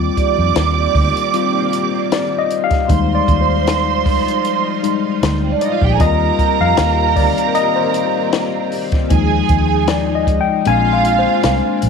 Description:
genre	lush 1970s-style soul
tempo	77 BPM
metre	4/4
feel	swing 54% on 16ths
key	Eb major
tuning	A4 = 439 Hz
part	warm studio string section	second line	0.0-11.8 s	C4 to D6	-19 LUFS	right 16 dB	none
part	tine electric piano	accompaniment	0.0-11.9 s	F3 to Ab5	-18 LUFS	left 10 dB	medium stereo tremolo
part	string machine, full ensemble	sustained chords	0.0-11.9 s	Eb3 to G4	-24 LUFS	equal	ensemble chorus
part	vintage muted fingered electric bass	bass	0.0-11.9 s	Bb1 to F2	-18 LUFS	right 2 dB	none
part	compact cocktail drum kit	drums	0.2-11.9 s	hi-hat, kick drum, snare drum	-19 LUFS	left 1 dB	none
room	small room ambience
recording	1960s-style stereo with parts hard left and right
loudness	-13 LUFS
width	side -6 dB against mid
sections	0.0-11.9 A section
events	tine electric piano solo 0.0-11.9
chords	0.0 Eb6; 2.9 Fm9/Eb; 6.0 Eb6; 9.1 Fm7/Eb; 10.7 Bb9

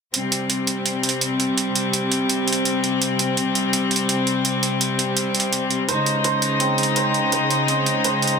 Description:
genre	half-time drum and bass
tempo	167 BPM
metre	4/4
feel	swing 57% on 16ths, half-time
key	C phrygian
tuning	A4 = 440 Hz
part	rich chamber string section	sustained chords	0.1-8.4 s	C3 to Eb4	-20 LUFS	left 2 dB	none
part	electronic hi-hat	drums	0.1-8.3 s	none	-22 LUFS	right 3 dB	overdrive
part	santur	arpeggios	5.9-8.4 s	C4 to C5	-22 LUFS	right 4 dB	vintage 12-bit sampler grit, digital delay
room	moderate lush hall reverb, RT60 2.1 s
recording	dense, heavily limited modern master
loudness	-18 LUFS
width	side -5 dB against mid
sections	0.1-8.4 A section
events	none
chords	0.1 C5; 5.9 Db5

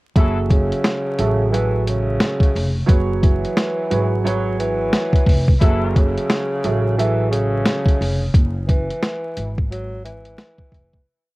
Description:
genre	hip hop, boom-bap hip-hop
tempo	88 BPM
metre	4/4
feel	swing 61% on 16ths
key	F# minor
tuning	A4 = 440 Hz
part	dark concert grand piano	accompaniment	0.2-7.9 s	F#3 to E5	-23 LUFS	right 4 dB	cassette tape, high-pass filter, low-pass filter
part	bright trumpet section	stabs	0.2-0.4, 5.6-6.1 s	F#3 to A4	-31 LUFS	left 5 dB	high-pass filter, low-pass filter, cassette tape, tape echo
part	upright bass	bass	0.2-11.0 s	E#1 to A1	-22 LUFS	equal	none
part	boom bap sampler-style drum kit	drums	0.2-11.1 s	hi-hat, kick drum, snare drum	-16 LUFS	equal	none
part	breathy tenor saxophone	melody	0.5-11.0 s	C#3 to F#3	-24 LUFS	equal	high-pass filter, low-pass filter, cassette tape, tape echo
room	small room ambience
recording	home recording on cassette, vinyl crackle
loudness	-16 LUFS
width	side -20 dB against mid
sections	0.2-11.1 hook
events	break 8.3-11.1; fade-out 8.3-11.1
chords	0.2 F#m7; 2.9 E69; 5.6 F#m7; 8.3 Fmmaj7 (rootless)

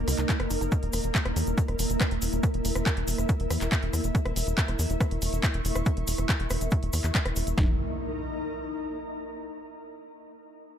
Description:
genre	psychedelic trance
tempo	140 BPM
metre	4/4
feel	straight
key	unclear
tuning	A4 = 435 Hz
part	swarming drone	sustained chords	0.0-7.6 s	Bb3 to Bb4	-34 LUFS	right 1 dB	built-in reverb, sidechain pumping
part	woody wave-folded pluck	riff	0.0-0.7, 7.6-7.8 s	Eb4 to Fb4	-39 LUFS	moving between left 6 dB and right 4 dB	chorus, auto-pan, sidechain pumping, ping-pong delay
part	tight sequencer bass	bass	0.0-7.8 s	Eb1 to Fb2	-29 LUFS	equal	tube saturation
part	ethereal airy pad	texture	0.0-9.3 s	Eb4 to Db6	-36 LUFS	left 2 dB	ensemble chorus, built-in reverb, sidechain pumping
part	big-room dance drum kit	drums	0.1-7.6 s	handclaps, hi-hat, rim click	-32 LUFS	equal	overdrive
part	cabasa	percussion	0.1-7.6 s	none	-39 LUFS	left 4 dB	none
part	techno drum kit	drums	0.3-7.7 s	kick drum, snare drum	-25 LUFS	equal	none
part	impact	sound effects	7.7-9.3 s	none	-38 LUFS	equal	none
room	little or no reverb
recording	none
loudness	-25 LUFS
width	side -9 dB against mid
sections	0.0-7.6 A section; 7.6-9.3 B section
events	filter sweep on synth drone 0.0-7.6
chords	0.0 Eb5; 0.7 Bbdim/Fb; 7.6 Eb5

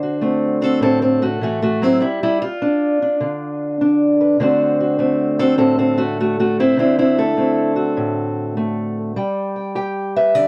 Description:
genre	acoustic country blues, solo or duo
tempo	101 BPM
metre	4/4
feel	swing 66% on 8ths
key	D mixolydian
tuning	A4 = 441 Hz
part	fingerpicked steel-string acoustic guitar	solo	0.0-10.5 s	A2 to G5	-18 LUFS	equal	none
room	moderate booth ambience, RT60 0.2 s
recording	dry, close 1970s-style studio recording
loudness	-18 LUFS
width	mono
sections	0.0-10.5 A section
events	none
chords	0.0 D7; 2.0 G7(no3); 4.4 D7; 9.2 G

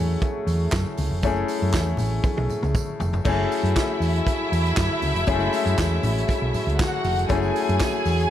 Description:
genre	disco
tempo	119 BPM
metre	4/4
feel	straight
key	F# minor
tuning	A4 = 443 Hz
part	clear baby grand piano	accompaniment	0.0-8.3 s	G#3 to G#4	-27 LUFS	left 6 dB	none
part	mellow French horn section	sustained chords	0.0-8.3 s	F#3 to G#4	-32 LUFS	right 2 dB	none
part	hollow-body short-scale fingered electric bass	bass	0.0-8.2 s	E#1 to F#2	-24 LUFS	right 1 dB	none
part	vintage drum kit	drums	0.2-8.3 s	crash cymbal, handclaps, hi-hat, kick drum, snare drum, toms	-26 LUFS	right 1 dB	none
part	tambourine	percussion	0.2-8.2 s	none	-43 LUFS	right 10 dB	none
part	congas	percussion	0.5-7.9 s	none	-34 LUFS	left 3 dB	none
part	clear studio string section	second line	3.3-8.3 s	E4 to G#5	-27 LUFS	left 1 dB	none
room	light reverb, small room ambience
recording	none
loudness	-20 LUFS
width	side -11 dB against mid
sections	0.0-3.3 A section; 3.3-8.3 B section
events	drum fill 2.2-3.3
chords	0.0 F#m9

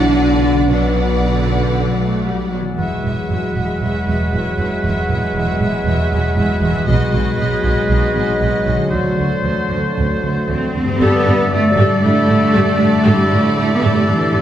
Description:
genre	cinematic, heroic adventure film score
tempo	117 BPM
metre	4/4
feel	straight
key	unclear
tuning	A4 = 435 Hz
part	clear symphonic violin section	melody	0.0-14.4 s	B4 to E5	-29 LUFS	left 4 dB	none
part	rich studio violin section	second line	0.0-14.4 s	D4 to F#5	-29 LUFS	left 2 dB	none
part	rich symphonic viola section	accompaniment	0.0-14.4 s	D3 to A4	-26 LUFS	right 1 dB	none
part	mellow French horn section	sustained chords	0.0-14.4 s	B2 to E4	-25 LUFS	left 1 dB	none
part	concert harp	arpeggios	0.0-14.4 s	G2 to D6	-25 LUFS	left 4 dB	none
part	rich symphonic cello section	bass	0.0-14.4 s	E2 to C4	-20 LUFS	right 2 dB	none
part	rich symphonic double bass section	bass	0.0-14.4 s	E1 to G2	-20 LUFS	right 2 dB	none
part	bright oboe	second line	2.8-14.4 s	A4 to C5	-23 LUFS	equal	none
part	concert flute	second line	2.8-14.4 s	D5 to F#5	-25 LUFS	left 3 dB	none
part	warm clarinet	second line	2.8-14.4 s	F#4 to G#4	-26 LUFS	left 2 dB	none
part	mellow trombone section	sustained chords	2.8-14.4 s	D3 to A3	-23 LUFS	right 2 dB	none
room	wet recital hall reverb, RT60 1.5 s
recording	heard from further back in the room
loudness	-14 LUFS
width	side -11 dB against mid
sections	0.0-2.8 A section; 2.8-11.0 B section; 11.0-14.4 C section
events	none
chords	0.0 Bm; 2.8 Eadd9; 6.9 B6; 8.9 D7; 11.0 Gadd9

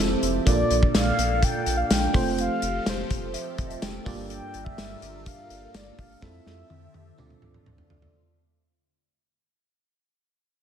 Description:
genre	1980s-style pop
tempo	125 BPM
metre	4/4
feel	straight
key	unclear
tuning	A4 = 440 Hz
part	FM electric piano	accompaniment	0.0-8.2 s	G2 to E5	-29 LUFS	right 3 dB	chorus, slapback echo
part	phased analog pad	sustained chords	0.0-8.1 s	D3 to A5	-36 LUFS	left 2 dB	phaser, chorus
part	round analog bass	bass	0.0-8.1 s	F1 to F2	-31 LUFS	equal	none
part	modern studio drum kit	drums	0.2-8.1 s	hi-hat, kick drum, snare drum, tambourine, toms	-25 LUFS	left 1 dB	none
part	mellow horn-like synth lead	melody	0.5-7.7 s	C5 to G5	-30 LUFS	left 2 dB	chorus, slapback echo
part	soft synth bell	second line	3.3-4.2 s	Eb5 to G5	-44 LUFS	equal	chorus, phaser, ping-pong delay, slapback echo
room	moderate lush hall reverb, RT60 1.6 s, studio ambience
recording	big arena sound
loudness	-22 LUFS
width	side -9 dB against mid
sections	0.0-8.1 A section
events	fade-out 0.0-8.1; drum fill 6.2-8.1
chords	0.5 Bbmaj7; 2.1 F; 4.1 Gm7; 6.2 Fmaj7; 7.2 Dm7

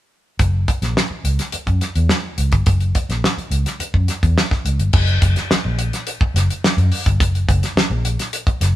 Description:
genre	funk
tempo	106 BPM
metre	4/4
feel	straight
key	F# mixolydian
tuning	A4 = 440 Hz
part	vintage muted fingered electric bass	bass	0.4-8.7 s	F#1 to F#2	-18 LUFS	equal	none
part	damped 70s drum kit	drums	0.4-8.7 s	crash cymbal, hi-hat, kick drum, snare drum	-18 LUFS	equal	none
room	light reverb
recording	band playing live in one room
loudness	-16 LUFS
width	side -14 dB against mid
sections	0.4-4.9 A section; 4.9-8.8 B section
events	none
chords	none

